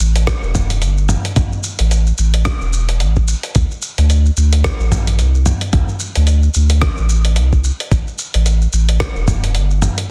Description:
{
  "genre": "organic downtempo",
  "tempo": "110 BPM",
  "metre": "4/4",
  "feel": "swing 57% on 16ths",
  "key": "unclear",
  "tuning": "A4 = 441 Hz",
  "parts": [
    { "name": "warm sub bass", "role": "bass", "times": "0.0-9.9 s", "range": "E1 to D2", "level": "-16 LUFS", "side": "equal", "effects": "sidechain pumping" },
    { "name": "dusty soul sampler-style drum kit", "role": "drums", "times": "0.0-10.1 s", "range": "hi-hat, rim click, shaker, toms", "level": "-23 LUFS", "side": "equal", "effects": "soft clipping on snare" },
    { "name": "electronic kick drum", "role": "drums", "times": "0.3-9.4 s", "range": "none", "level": "-20 LUFS", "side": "equal", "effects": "none" }
  ],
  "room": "little or no reverb",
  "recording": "dense, heavily limited modern master",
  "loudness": "-15 LUFS",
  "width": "mono",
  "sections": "0.0-10.1 A section",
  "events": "none",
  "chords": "none"
}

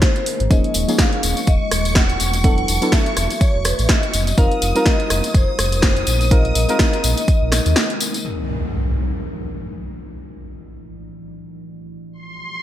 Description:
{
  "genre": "deep house",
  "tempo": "124 BPM",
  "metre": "4/4",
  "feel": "swing 57% on 16ths",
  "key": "Eb dorian",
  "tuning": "A4 = 444 Hz",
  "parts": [
    { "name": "vibraphone with medium mallets", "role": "melody", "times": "0.0-7.9 s", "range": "B4 to Gb5", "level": "-25 LUFS", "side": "left 1 dB", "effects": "digital delay" },
    { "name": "deep dark ambient pad", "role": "sustained chords", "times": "0.0-12.6 s", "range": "G3 to Eb5", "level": "-30 LUFS", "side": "left 2 dB", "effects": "chorus, built-in reverb, sidechain pumping" },
    { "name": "electronic kick drum", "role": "drums", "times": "0.0-7.4 s", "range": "none", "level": "-16 LUFS", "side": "equal", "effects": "none" },
    { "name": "punchy analog drum machine", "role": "drums", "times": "0.0-8.2 s", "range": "hi-hat, rim click, snare drum", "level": "-21 LUFS", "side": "right 1 dB", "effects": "gated reverb" },
    { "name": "sub bass with octave", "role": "bass", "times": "0.4-7.7 s", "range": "Eb1 to Eb2", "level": "-20 LUFS", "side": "equal", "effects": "sidechain pumping" },
    { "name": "deep mellow chord stab", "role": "stabs", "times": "0.5-8.2 s", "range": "F3 to Bb4", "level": "-23 LUFS", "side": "equal", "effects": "chorus, sidechain pumping, ping-pong delay" },
    { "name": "tambourine", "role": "percussion", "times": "0.5-8.2 s", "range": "none", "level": "-27 LUFS", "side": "left 6 dB", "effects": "none" },
    { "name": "string machine, violins", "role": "texture", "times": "0.5-8.3, 12.1-12.6 s", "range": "C6 to Eb6", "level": "-29 LUFS", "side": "equal", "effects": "ensemble chorus, sidechain pumping" },
    { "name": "impact", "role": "sound effects", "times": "8.2-10.2 s", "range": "none", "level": "-25 LUFS", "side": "equal", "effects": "none" }
  ],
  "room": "light reverb",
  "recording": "bright 1980s-style digital production",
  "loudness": "-15 LUFS",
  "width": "side -12 dB against mid",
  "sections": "0.0-8.2 A section; 8.2-12.6 B section",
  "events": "break 7.8-8.2; impact 8.2-10.2; filter sweep on ambient pad 8.2-12.6",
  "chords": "0.0 Bb9sus4; 0.5 Eb9sus4; 2.2 E9sus4; 4.1 F9sus4; 6.1 Bb9sus4; 8.2 Eb9sus4; 9.9 E9sus4; 11.9 F9sus4"
}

